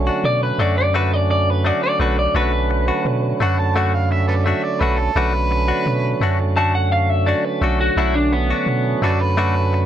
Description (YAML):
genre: blues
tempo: 85 BPM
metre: 4/4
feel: straight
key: B minor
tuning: A4 = 440 Hz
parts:
  - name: tonewheel organ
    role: accompaniment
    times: 0.0-9.9 s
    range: D3 to C#4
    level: -23 LUFS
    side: right 5 dB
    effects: overdrive, slow rotary speaker
  - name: punchy sub bass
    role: bass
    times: 0.0-9.9 s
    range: B1 to B2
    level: -20 LUFS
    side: equal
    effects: none
  - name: direct-recorded clean electric guitar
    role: stabs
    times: 0.1-9.8 s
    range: A3 to F#4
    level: -24 LUFS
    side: left 5 dB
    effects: none
  - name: electric guitar through a small old amp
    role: melody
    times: 0.3-9.0 s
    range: B3 to A5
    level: -21 LUFS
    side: left 1 dB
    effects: none
  - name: overdriven harmonica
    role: second line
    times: 3.4-9.9 s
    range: A4 to A5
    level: -23 LUFS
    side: right 2 dB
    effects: slapback echo
room: light reverb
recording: none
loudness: -16 LUFS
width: side -10 dB against mid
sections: 0.0-9.9 A section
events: none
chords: 0.0 Bm7